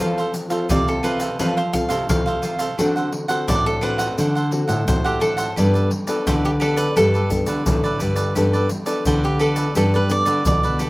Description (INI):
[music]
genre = samba and choro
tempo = 86 BPM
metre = 4/4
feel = straight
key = unclear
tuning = A4 = 440 Hz
[part]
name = cavaquinho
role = accompaniment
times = 0.0-10.9 s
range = D4 to F#5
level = -26 LUFS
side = right 3 dB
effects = none
[part]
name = nylon-string guitar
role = accompaniment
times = 0.0-10.9 s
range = A2 to A4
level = -25 LUFS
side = left 2 dB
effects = none
[part]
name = nylon-string guitar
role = bass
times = 0.0-10.9 s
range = G2 to F3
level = -22 LUFS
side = equal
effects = none
[part]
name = egg shaker, surdo and pandeiro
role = percussion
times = 0.0-10.9 s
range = none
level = -24 LUFS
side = equal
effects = none
[part]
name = cavaquinho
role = melody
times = 0.7-10.9 s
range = G4 to F5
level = -23 LUFS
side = right 1 dB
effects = none
[sound]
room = little or no reverb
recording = recorded outdoors, with no room sound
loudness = -17 LUFS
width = side -20 dB against mid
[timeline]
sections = 0.0-10.9 A section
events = none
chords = 0.0 F; 2.8 D7; 5.6 Gadd9